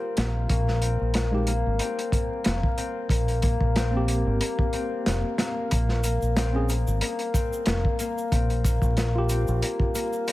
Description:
trip hop; 92 BPM; 4/4; swing 55% on 16ths; A4 = 438 Hz
bright tine electric piano; accompaniment; 0.0-10.3 s; Ab3 to Ab4; -32 LUFS; right 1 dB; tremolo, tape echo
concert harp; arpeggios; 0.0-10.3 s; Bb3 to C4; -29 LUFS; left 3 dB; tape echo
deep dub fingered electric bass; bass; 0.2-9.6 s; F1 to Bb1; -25 LUFS; equal
crunchy breakbeat drum kit; drums; 0.2-10.3 s; hi-hat, kick drum, snare drum; -26 LUFS; equal
tube shaker; percussion; 5.7-10.3 s; -41 LUFS; right 1 dB
small room ambience; vinyl crackle; -22 LUFS; side -17 dB against mid
0.0-10.3 A section
0.5 N.C.; 3.1 Abmaj7 (rootless); 5.7 N.C.; 8.3 Gm7/Bb

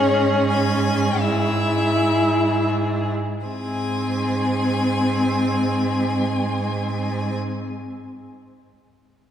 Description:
classical, slow romantic movement for string quartet; 25-32 BPM (dotted quarters); 12/8; rubato; Ab major; A4 = 440 Hz
clear violin; melody; 0.0-7.4 s; Db5 to Ab5; -27 LUFS; left 5 dB
rich violin; second line; 0.0-7.4 s; Ab4; -27 LUFS; left 2 dB
rich viola; accompaniment; 0.0-7.4 s; C4 to Fb4; -23 LUFS; right 1 dB
rich cello; bass; 0.0-7.4 s; Ab2; -24 LUFS; right 2 dB
wet church reverb, RT60 2.6 s; -19 LUFS; side -9 dB against mid
0.0-3.5 A section; 3.5-9.3 B section
slowing down 0.0-3.5
0.0 Dbm/Ab; 3.5 Ab

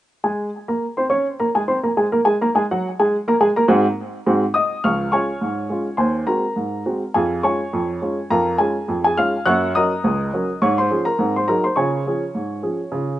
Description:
ragtime piano; 104 BPM; 2/4; swing 56% on 16ths; Db major; A4 = 439 Hz
warm upright piano; solo; 0.2-13.2 s; Db2 to Gb6; -17 LUFS; equal
little or no reverb; recorded outdoors, with no room sound, nothing above 10.3 kHz; -17 LUFS; side -14 dB against mid
0.2-4.8 A section; 4.8-13.2 B section
0.2 Db5; 2.5 Ab7; 4.8 Db; 6.0 Ab7/Eb; 7.2 Db/F; 9.5 Gb; 10.6 Db/Ab; 11.2 Ab7; 11.8 Db

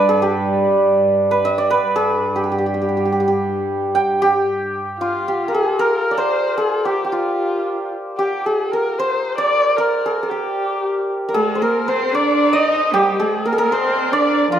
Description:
Persian modal ensemble; 113 BPM; 3/4; straight; G dastgah chahargah; A4 = 441 Hz
santur; melody; 0.0-14.6 s; D4 to G5; -17 LUFS; right 1 dB
warm studio cello section; drone; 0.0-5.0 s; G2; -26 LUFS; right 2 dB
dark kamancheh; second line; 5.0-14.6 s; F4 to Eb5; -21 LUFS; left 3 dB
rich cello; second line; 11.3-14.6 s; F3 to Eb4; -21 LUFS; right 5 dB
moderate recital hall reverb, RT60 1.4 s; minimal, uncompressed stereo recording; -16 LUFS; side -10 dB against mid
0.0-5.0 A section; 5.0-14.6 B section

